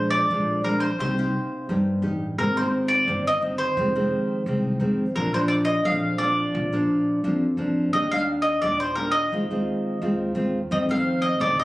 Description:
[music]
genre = samba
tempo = 86 BPM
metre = 4/4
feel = straight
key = unclear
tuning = A4 = 439 Hz
[part]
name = mandolin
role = melody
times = 0.0-11.6 s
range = Bb4 to F5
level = -24 LUFS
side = equal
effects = plate reverb
[part]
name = nylon-string guitar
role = accompaniment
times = 0.0-11.6 s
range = F2 to G4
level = -24 LUFS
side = equal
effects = none
[part]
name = upright bass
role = bass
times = 0.0-11.6 s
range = F1 to G2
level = -29 LUFS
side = equal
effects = none
[sound]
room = moderate studio reverb, RT60 0.8 s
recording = recorded on a phone in the room, club reverb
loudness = -21 LUFS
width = side -17 dB against mid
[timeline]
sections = 0.0-11.6 A section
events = none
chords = 0.0 Bb7; 1.0 Cm7; 2.4 Abadd9; 3.8 Fm7; 5.2 Bb; 7.9 Ebmaj7; 9.3 Ab6/Eb; 10.7 F7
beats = 0.30 1.00 1.69 | 2.38 3.08 3.77 4.46 | 5.16 5.85 6.54 7.24 | 7.93 8.63 9.32 10.01 | 10.71 11.40

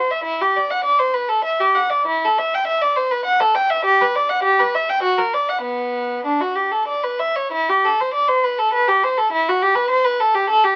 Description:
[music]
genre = classical, baroque-style suite movement for unaccompanied violin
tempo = 90-103 BPM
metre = 3/4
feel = rubato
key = B minor from 3.8 s, E minor from 7.5 s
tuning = A4 = 436 Hz
[part]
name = warm violin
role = solo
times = 0.0-10.8 s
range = B3 to G5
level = -18 LUFS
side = equal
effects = none
[sound]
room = moderate studio reverb, RT60 0.6 s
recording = very old 78 rpm record, vinyl crackle, nothing above 7.5 kHz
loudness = -18 LUFS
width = mono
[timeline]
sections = 0.0-7.5 A section; 7.5-10.8 A section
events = none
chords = none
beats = | 0.23 0.84 1.44 | 2.07 2.67 3.26 | 3.84 4.43 5.02 | 5.62 6.25 6.87 | 7.52 8.14 8.73 | 9.32 9.91 10.49

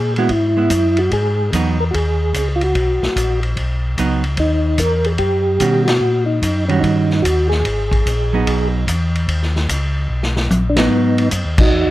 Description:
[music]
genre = soul jazz organ trio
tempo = 147 BPM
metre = 4/4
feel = swing 66% on 8ths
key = G# minor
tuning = A4 = 440 Hz
[part]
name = percussive tonewheel organ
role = melody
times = 0.0-11.9 s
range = B3 to A#4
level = -18 LUFS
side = equal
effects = chorus vibrato, slow rotary speaker
[part]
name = mellow tonewheel organ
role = bass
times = 0.0-11.9 s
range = G#1 to B2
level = -18 LUFS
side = equal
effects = chorus vibrato, slow rotary speaker
[part]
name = hollow-body jazz guitar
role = accompaniment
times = 0.2-11.3 s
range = D#3 to F#4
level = -19 LUFS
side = right 5 dB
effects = none
[part]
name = vintage drum kit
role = drums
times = 0.2-11.6 s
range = crash cymbal, hi-hat, kick drum, ride cymbal, snare drum, toms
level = -22 LUFS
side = equal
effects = none
[sound]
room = light reverb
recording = close, detailed microphones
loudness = -14 LUFS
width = side -15 dB against mid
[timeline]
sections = 0.0-10.9 A section; 10.9-11.9 A section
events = band accent 5.8, 10.7, 11.5; drum fill 10.1-10.9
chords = 0.0 C#m7 (rootless); 1.1 G#m7; 4.4 D#7#9; 7.6 G#m7; 9.3 D#7(no3); 10.9 G#m7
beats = 0.30 0.71 | 1.12 1.53 1.93 2.34 | 2.75 3.16 3.57 3.98 | 4.38 4.79 5.20 5.61 | 6.01 6.42 6.83 7.24 | 7.65 8.05 8.46 8.87 | 9.28 9.68 10.09 10.50 | 10.91 11.31 11.72

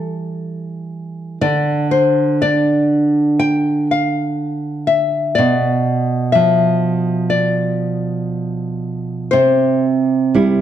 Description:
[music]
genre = romantic duo for nylon-string guitar and classical guitar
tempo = 60 BPM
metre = 4/4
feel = rubato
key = unclear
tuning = A4 = 442 Hz
[part]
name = nylon-string guitar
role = melody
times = 0.0-10.6 s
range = A4 to G5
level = -18 LUFS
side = left 5 dB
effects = none
[part]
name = nylon-string guitar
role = accompaniment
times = 0.0-10.6 s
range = B2 to E4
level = -16 LUFS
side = right 3 dB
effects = none
[sound]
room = moderate recital hall reverb, RT60 1.3 s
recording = dark, warm production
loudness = -14 LUFS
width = side -10 dB against mid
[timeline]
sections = 0.0-10.6 A section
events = none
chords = 0.0 Emadd11; 1.4 N.C.; 5.4 Bdim; 9.3 C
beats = 0.41 | 1.41 2.41 3.40 4.40 | 5.37 6.35 7.33 8.32 | 9.33 10.35

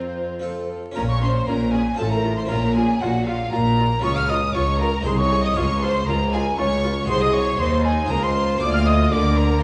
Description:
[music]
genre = classical, baroque-style concerto movement with solo episodes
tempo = 118 BPM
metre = 3/4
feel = straight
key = Bb minor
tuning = A4 = 440 Hz
[part]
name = hollow concert flute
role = melody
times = 0.0-9.6 s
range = C5 to F6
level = -28 LUFS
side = equal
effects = none
[part]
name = rich chamber violin section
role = melody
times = 0.0-9.6 s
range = A4 to F6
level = -33 LUFS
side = equal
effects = none
[part]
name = clear chamber violin section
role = second line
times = 0.0-9.6 s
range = F4 to F5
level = -30 LUFS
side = equal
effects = none
[part]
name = harpsichord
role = accompaniment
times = 0.0-9.6 s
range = C2 to C5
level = -30 LUFS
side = equal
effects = none
[part]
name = rich chamber viola section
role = accompaniment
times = 0.0-9.6 s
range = C4 to Bb4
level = -32 LUFS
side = equal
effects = none
[part]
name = rich studio cello section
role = bass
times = 0.0-9.6 s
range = C2 to D3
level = -26 LUFS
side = equal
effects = none
[part]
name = rich chamber double bass section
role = bass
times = 1.0-9.6 s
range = A1 to Eb2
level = -27 LUFS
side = equal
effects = none
[sound]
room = wet recital hall reverb, RT60 1.3 s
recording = recorded in a church or concert hall, vinyl crackle, nothing above 10.7 kHz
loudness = -21 LUFS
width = mono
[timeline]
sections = 1.0-9.6 A section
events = none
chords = 0.4 F; 1.0 Bbm; 2.0 F/A; 2.5 Bbm; 4.0 Db; 5.1 Ab/C; 5.6 Db; 7.1 Ab7/C; 8.1 Db; 8.6 Bb7/D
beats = 0.44 | 0.96 1.48 1.99 | 2.50 3.02 3.53 | 4.04 4.55 5.06 | 5.57 6.08 6.58 | 7.09 7.60 8.11 | 8.61 9.12

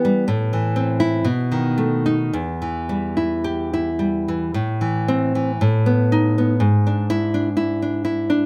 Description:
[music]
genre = romantic piece for solo classical guitar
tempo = 53-64 BPM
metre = 2/4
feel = rubato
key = E minor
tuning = A4 = 440 Hz
[part]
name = nylon-string guitar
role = solo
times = 0.0-8.5 s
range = E2 to G4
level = -20 LUFS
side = equal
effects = none
[sound]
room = light reverb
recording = close, detailed microphones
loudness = -20 LUFS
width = mono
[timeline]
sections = 0.0-4.6 A section; 4.6-8.5 B section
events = none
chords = 0.3 Am; 1.3 B7; 2.3 Em; 4.6 Am; 5.6 B7/A; 6.6 E7/G#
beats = | 0.29 1.27 | 2.34 3.46 | 4.56 5.60 | 6.62 7.58

